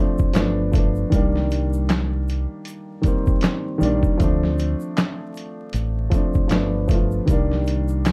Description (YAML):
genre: lo-fi hip hop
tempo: 78 BPM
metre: 4/4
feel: swing 57% on 16ths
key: C dorian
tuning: A4 = 441 Hz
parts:
  - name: warm upright piano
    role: accompaniment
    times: 0.0-8.1 s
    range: Eb3 to F4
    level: -26 LUFS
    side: equal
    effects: cassette tape, low-pass filter
  - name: lo-fi sampler-style drum kit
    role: drums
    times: 0.2-8.1 s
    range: handclaps, hi-hat, kick drum, snare drum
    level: -23 LUFS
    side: equal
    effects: none
  - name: egg shaker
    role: percussion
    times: 0.2-8.1 s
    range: none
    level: -54 LUFS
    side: equal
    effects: none
  - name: deep dub fingered electric bass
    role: bass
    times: 0.4-8.1 s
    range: G1 to D2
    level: -25 LUFS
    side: equal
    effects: none
room: little or no reverb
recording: dark, warm production, vinyl crackle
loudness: -21 LUFS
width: mono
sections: 0.0-8.1 A section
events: none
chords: 0.3 G7; 1.1 Cm7; 4.2 Dm7; 6.5 G7; 7.3 Cm7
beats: 0.35 | 1.12 1.89 2.66 3.42 | 4.19 4.96 5.73 6.50 | 7.27 8.04